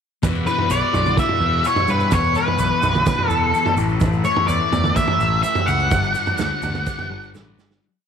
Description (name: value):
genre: psychedelic rock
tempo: 126 BPM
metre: 4/4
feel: straight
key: E dorian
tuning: A4 = 440 Hz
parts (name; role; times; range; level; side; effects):
- overdriven tonewheel organ; sustained chords; 0.2-7.8 s; C#3 to B4; -33 LUFS; right 11 dB; slow rotary speaker
- thick fuzz guitar; riff; 0.2-7.8 s; E2 to A3; -25 LUFS; left 11 dB; distortion, phaser
- growling picked electric bass; bass; 0.2-7.8 s; G1 to G2; -23 LUFS; equal; overdrive
- vintage drum kit; drums; 0.2-7.8 s; kick drum, snare drum, toms; -23 LUFS; right 3 dB; none
- egg shaker; percussion; 0.2-7.8 s; none; -40 LUFS; right 17 dB; none
- octave-fuzz lead guitar; melody; 0.5-7.3 s; B4 to F#5; -20 LUFS; equal; distortion, tape echo
room: moderate echo chamber reverb, RT60 1.8 s, small room ambience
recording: 1960s-style stereo with parts hard left and right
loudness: -16 LUFS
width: side -7 dB against mid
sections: 0.2-7.8 verse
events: fade-out 5.9-7.8; drum fill 7.3-7.8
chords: 0.2 Emadd9; 3.8 A; 5.9 Gmaj7